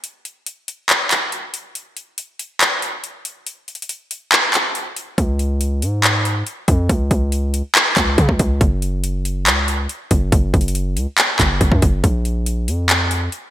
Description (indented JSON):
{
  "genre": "hip hop, trap",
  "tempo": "140 BPM",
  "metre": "4/4",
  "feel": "half-time",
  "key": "unclear",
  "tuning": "A4 = 440 Hz",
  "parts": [
    { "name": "trap drum kit", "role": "drums", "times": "0.0-13.4 s", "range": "handclaps, hi-hat, kick drum", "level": "-16 LUFS", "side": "equal", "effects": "overdrive, gated reverb" },
    { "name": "hard-hitting 808-style bass", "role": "bass", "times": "5.2-13.3 s", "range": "Gb1 to Db3", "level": "-18 LUFS", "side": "equal", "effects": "none" }
  ],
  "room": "light reverb, digital ambience",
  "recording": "bright 1980s-style digital production",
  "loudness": "-15 LUFS",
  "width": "side -13 dB against mid",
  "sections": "0.0-13.5 A section",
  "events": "break 0.0-5.2; kick muted 3.5-5.2",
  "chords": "none"
}